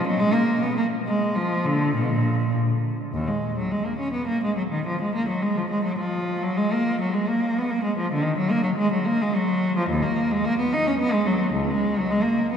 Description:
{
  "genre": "classical, baroque-style suite movement for unaccompanied cello",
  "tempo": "97-110 BPM",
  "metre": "3/4",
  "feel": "rubato",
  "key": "unclear",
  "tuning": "A4 = 440 Hz",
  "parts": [
    { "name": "rich cello", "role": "solo", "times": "0.0-12.6 s", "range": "Db2 to Eb4", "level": "-21 LUFS", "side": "equal", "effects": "none" }
  ],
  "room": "wet cathedral reverb, RT60 5.4 s",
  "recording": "recorded in a church or concert hall",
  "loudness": "-21 LUFS",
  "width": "side -8 dB against mid",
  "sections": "0.0-3.1 A section; 3.1-12.6 A section",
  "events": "none",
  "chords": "none"
}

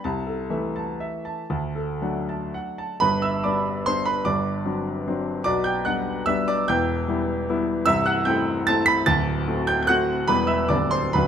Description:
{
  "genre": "classical, romantic triple-time dance for piano with dotted rhythms",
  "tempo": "110-162 BPM",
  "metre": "3/4",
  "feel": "rubato",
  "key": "G major",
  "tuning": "A4 = 440 Hz",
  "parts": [
    { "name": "clear grand piano", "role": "solo", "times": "0.0-11.3 s", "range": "C1 to B6", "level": "-21 LUFS", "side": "equal", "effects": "none" }
  ],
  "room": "moderate large studio reverb, RT60 1.2 s",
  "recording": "close, detailed microphones",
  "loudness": "-21 LUFS",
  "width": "side -8 dB against mid",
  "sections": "0.0-3.0 A section; 3.0-11.3 B section",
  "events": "none",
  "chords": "0.0 Am/C; 1.5 D; 3.0 G; 4.2 D7/G; 5.4 G/B; 6.7 Em; 7.9 Am7/C; 9.1 D7; 10.3 Em; 10.7 G/D"
}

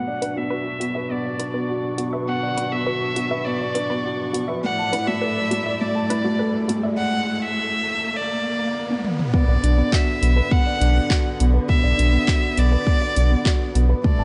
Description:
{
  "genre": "piano and strings electronica",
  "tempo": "102 BPM",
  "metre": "4/4",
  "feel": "straight",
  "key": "B minor",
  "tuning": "A4 = 441 Hz",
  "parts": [
    { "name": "rich violin", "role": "melody", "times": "0.0-14.2 s", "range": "D5 to F#5", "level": "-28 LUFS", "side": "equal", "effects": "low-pass filter" },
    { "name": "muted string quartet", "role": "sustained chords", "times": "0.0-14.2 s", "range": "A2 to C#6", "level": "-32 LUFS", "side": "equal", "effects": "sidechain pumping, low-pass filter" },
    { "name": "felt-muted upright piano", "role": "riff", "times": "0.0-14.2 s", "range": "A3 to A5", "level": "-28 LUFS", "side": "equal", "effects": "none" },
    { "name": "riser", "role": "sound effects", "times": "3.8-9.3 s", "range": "none", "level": "-34 LUFS", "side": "equal", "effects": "none" },
    { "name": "unison pluck", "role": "arpeggios", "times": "0.2-6.9 s", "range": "F#4 to E5", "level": "-33 LUFS", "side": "equal", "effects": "sidechain pumping, digital delay" },
    { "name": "deep house drum kit", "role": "drums", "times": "0.2-14.2 s", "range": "handclaps, hi-hat, toms", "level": "-30 LUFS", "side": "equal", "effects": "none" },
    { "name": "electronic kick drum", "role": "drums", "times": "9.3-14.2 s", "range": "none", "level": "-22 LUFS", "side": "equal", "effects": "none" },
    { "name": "round analog bass", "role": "bass", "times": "9.5-14.2 s", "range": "A1 to B1", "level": "-19 LUFS", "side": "equal", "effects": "sidechain pumping" }
  ],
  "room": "moderate scoring stage reverb, RT60 1.9 s",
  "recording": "nothing above 10.4 kHz",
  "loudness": "-21 LUFS",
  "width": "mono",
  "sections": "0.0-9.3 A section; 9.3-14.2 B section",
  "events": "build-up 0.0-9.3; riser 3.8-9.3; drum fill 8.9-9.3; drop 9.3-14.2",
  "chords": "0.0 Bmadd9; 4.6 Asus4; 9.3 Bm"
}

